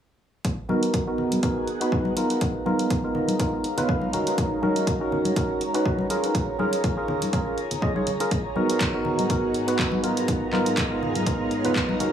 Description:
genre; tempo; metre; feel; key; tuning
deep house; 122 BPM; 4/4; swing 55% on 16ths; unclear; A4 = 441 Hz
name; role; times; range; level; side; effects
electronic kick drum; drums; 0.4-11.9 s; none; -27 LUFS; equal; none
punchy analog drum machine; drums; 0.4-12.1 s; handclaps, hi-hat; -31 LUFS; right 1 dB; none
airy breathy pad; texture; 0.4-12.1 s; G#3 to A#5; -31 LUFS; equal; chorus, phaser, sidechain pumping
percussive organ stab; stabs; 0.7-12.1 s; B3 to D#5; -25 LUFS; right 1 dB; chorus, sidechain pumping, analog delay
congas; percussion; 0.7-12.1 s; none; -30 LUFS; left 3 dB; none
soft string machine; sustained chords; 8.7-12.1 s; G#2 to A#5; -31 LUFS; equal; ensemble chorus, sidechain pumping
room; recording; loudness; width
moderate plate reverb, RT60 1.3 s; echo-heavy mix, small room reverb; -22 LUFS; side -9 dB against mid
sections
0.4-12.1 A section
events
filter sweep on synth stab 0.4-12.1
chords
0.4 G#m9; 2.4 C#13/G#; 6.3 A#m7; 8.3 C#13/G#

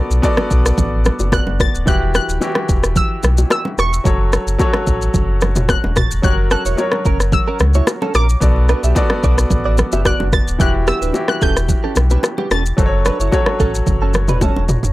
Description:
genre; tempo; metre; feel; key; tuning
afrobeats; 110 BPM; 4/4; straight; B minor; A4 = 440 Hz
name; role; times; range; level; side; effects
analog pluck; melody; 0.0-14.4 s; C#6 to A6; -23 LUFS; equal; chorus, analog delay
clear concert grand piano; accompaniment; 0.0-14.9 s; E3 to D5; -22 LUFS; left 1 dB; none
downlifter; sound effects; 0.1-1.9 s; none; barely audible; none; none
sub bass with octave; bass; 0.1-14.9 s; D1 to C#2; -16 LUFS; equal; none
deep house drum kit; drums; 0.1-14.9 s; kick drum, rim click, shaker, toms; -17 LUFS; equal; none
bongos and congas; percussion; 0.2-14.8 s; none; -24 LUFS; right 1 dB; none
direct-recorded clean electric guitar; riff; 6.5-14.6 s; B3 to E5; -23 LUFS; right 5 dB; analog chorus, analog delay
room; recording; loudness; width
little or no reverb; dry, gritty hardware recording; -13 LUFS; side -18 dB against mid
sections
0.0-14.9 A section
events
drum fill 14.4-14.9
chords
0.0 Bm7; 1.9 Emadd9; 4.1 F#m; 6.2 F#; 8.4 Bm7; 10.6 Emadd9; 12.8 F#m

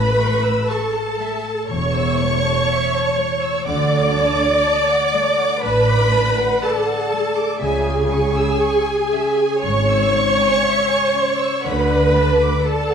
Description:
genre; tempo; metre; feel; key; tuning
cinematic, emotional film score for orchestra; 60 BPM; 4/4; rubato; unclear; A4 = 440 Hz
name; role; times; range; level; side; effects
rich studio violin section; melody; 0.0-12.9 s; G#5 to D6; -25 LUFS; left 1 dB; none
rich studio violin section; second line; 0.0-12.9 s; D5 to E6; -31 LUFS; equal; none
warm studio viola section; accompaniment; 0.0-12.9 s; G#4 to D5; -18 LUFS; right 1 dB; none
concert harp; arpeggios; 0.0-12.9 s; A2 to E5; -27 LUFS; left 8 dB; none
dark studio cello section; bass; 0.0-12.5 s; E2 to D3; -25 LUFS; right 2 dB; none
warm studio double bass section; bass; 0.0-12.5 s; E1 to D2; -24 LUFS; right 2 dB; none
room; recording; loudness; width
wet recital hall reverb, RT60 1.6 s; dark, warm production; -15 LUFS; side -7 dB against mid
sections
0.0-12.9 A section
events
none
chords
0.0 A; 3.7 D; 7.6 C#m; 11.6 D

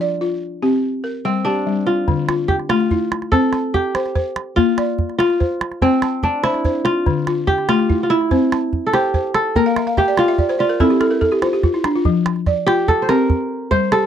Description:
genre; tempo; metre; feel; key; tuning
west african traditional, West African string and xylophone music; 96 BPM (dotted quarters); 12/8; straight; F major; A4 = 439 Hz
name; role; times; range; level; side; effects
kora; melody; 0.0-14.1 s; C4 to C5; -19 LUFS; right 1 dB; none
balafon; arpeggios; 0.0-14.1 s; D3 to A5; -19 LUFS; left 2 dB; none
calabash; percussion; 2.1-14.1 s; none; -20 LUFS; right 2 dB; none
room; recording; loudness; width
little or no reverb; dry, close 1970s-style studio recording; -15 LUFS; side -9 dB against mid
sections
0.0-2.1 A section; 2.1-12.1 B section; 12.1-14.1 C section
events
balafon fill 9.7-12.1; kora solo 12.1-14.1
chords
0.0 F5; 0.8 Gm; 2.1 Dm; 3.3 C; 4.6 Bb; 5.8 C; 7.1 Dm; 8.3 C; 9.6 Bb5; 10.8 N.C.; 12.1 F5; 13.3 N.C.

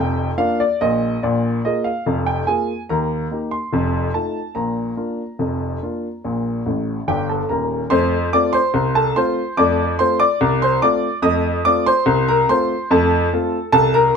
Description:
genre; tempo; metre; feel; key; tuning
ragtime piano; 72 BPM; 2/4; straight; Bb major, F major from 7.9 s; A4 = 440 Hz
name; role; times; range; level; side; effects
clear upright piano; solo; 0.0-14.2 s; Eb1 to Eb6; -16 LUFS; equal; none
room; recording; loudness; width
moderate club reverb, RT60 0.6 s; minimal, uncompressed stereo recording; -16 LUFS; side -6 dB against mid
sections
0.0-7.9 A section; 7.9-14.2 B section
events
upright piano fill 6.7-7.9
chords
0.0 Bb; 1.2 Bb5; 2.9 Eb; 3.7 F7; 4.6 Bb; 7.9 F; 11.3 F7

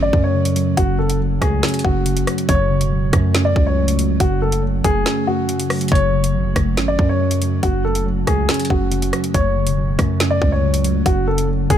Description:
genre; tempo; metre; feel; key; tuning
hip hop, drill; 140 BPM; 4/4; half-time; F# minor; A4 = 440 Hz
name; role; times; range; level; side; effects
dark baby grand piano; melody; 0.0-11.8 s; F#4 to D5; -22 LUFS; left 2 dB; none
muted felt-like synth keys; accompaniment; 0.0-11.8 s; F#2 to C#4; -22 LUFS; equal; chorus
glassy FM pad; sustained chords; 0.0-11.8 s; C#3 to F#4; -24 LUFS; equal; ensemble chorus, built-in reverb
distorted 808-style bass; bass; 0.0-11.8 s; E1 to F#2; -20 LUFS; right 1 dB; distortion
drill drum kit; drums; 0.1-11.8 s; hi-hat, kick drum, rim click, snare drum; -20 LUFS; right 1 dB; none
room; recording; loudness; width
little or no reverb; none; -15 LUFS; side -10 dB against mid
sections
0.0-11.8 A section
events
kick muted 5.1-5.9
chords
0.0 F#m

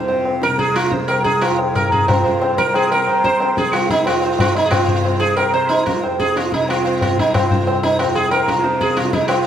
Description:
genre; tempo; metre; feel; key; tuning
indian classical, Hindustani; 182 BPM; 4/4; straight; C raga malkauns; A4 = 437 Hz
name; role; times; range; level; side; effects
sitar; melody; 0.0-9.5 s; Eb4 to C5; -16 LUFS; right 2 dB; none
tanpura; drone; 0.0-9.5 s; C2 to C3; -25 LUFS; left 2 dB; none
tabla; percussion; 0.0-9.4 s; none; -20 LUFS; left 2 dB; none
room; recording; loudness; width
wet plate reverb, RT60 3.5 s; heard from further back in the room; -14 LUFS; side -9 dB against mid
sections
0.0-2.1 A section; 2.1-9.5 B section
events
none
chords
none

